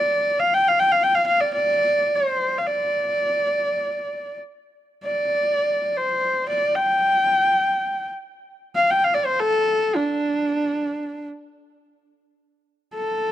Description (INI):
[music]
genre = mongolian traditional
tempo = free time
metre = none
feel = none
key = D yu mode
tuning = A4 = 440 Hz
[part]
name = clear horsehead fiddle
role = solo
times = 0.0-13.3 s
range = D4 to G5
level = -19 LUFS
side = equal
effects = none
[sound]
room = light reverb, small room ambience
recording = dry, close 1970s-style studio recording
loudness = -19 LUFS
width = side -12 dB against mid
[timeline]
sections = 0.0-12.4 A section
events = none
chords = none